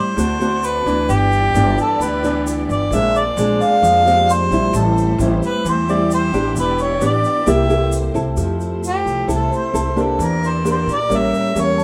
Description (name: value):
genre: bossa nova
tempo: 132 BPM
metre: 4/4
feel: straight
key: F major from 8.4 s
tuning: A4 = 442 Hz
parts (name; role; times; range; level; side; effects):
- mellow harmonica; melody; 0.0-11.8 s; G4 to F5; -20 LUFS; equal; none
- nylon-string guitar; accompaniment; 0.0-11.8 s; G2 to A4; -22 LUFS; equal; none
- warm studio string section; sustained chords; 0.0-11.8 s; Ab3 to D5; -31 LUFS; equal; none
- upright bass; bass; 0.2-11.8 s; E1 to Bb2; -23 LUFS; equal; none
- tube shaker; percussion; 0.2-11.8 s; none; -38 LUFS; equal; none
- tine electric piano; accompaniment; 3.6-4.9, 7.7-11.8 s; G4 to A5; -30 LUFS; equal; none
room: moderate studio ambience, RT60 0.5 s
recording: band playing live in one room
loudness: -17 LUFS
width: mono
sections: 0.0-8.4 A section; 8.4-11.8 B section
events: none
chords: 0.2 D7; 1.1 G6; 2.9 Bb9; 4.7 Am7; 6.6 Em7; 7.5 C7; 8.4 Fmaj7; 10.2 Em7b5; 11.1 A7b9